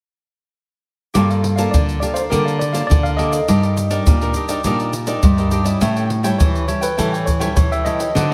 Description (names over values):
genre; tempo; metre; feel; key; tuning
samba and choro; 103 BPM; 4/4; straight; G minor; A4 = 440 Hz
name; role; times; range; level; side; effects
cavaquinho; accompaniment; 1.1-8.3 s; D4 to G5; -27 LUFS; equal; none
nylon-string guitar; bass; 1.1-8.3 s; G2 to E3; -22 LUFS; equal; none
egg shaker, surdo and pandeiro; percussion; 1.1-8.3 s; none; -21 LUFS; equal; none
nylon-string guitar; accompaniment; 1.2-8.3 s; A2 to Bb4; -27 LUFS; equal; none
tine electric piano; melody; 1.7-8.3 s; A4 to F5; -25 LUFS; equal; none
room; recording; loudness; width
light reverb; none; -17 LUFS; mono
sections
1.1-8.3 A section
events
none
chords
1.1 Gm9; 3.5 Ebmaj7/G; 5.8 A7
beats
| 1.15 1.73 2.32 2.90 | 3.49 4.07 4.65 5.24 | 5.82 6.40 6.99 7.57 | 8.15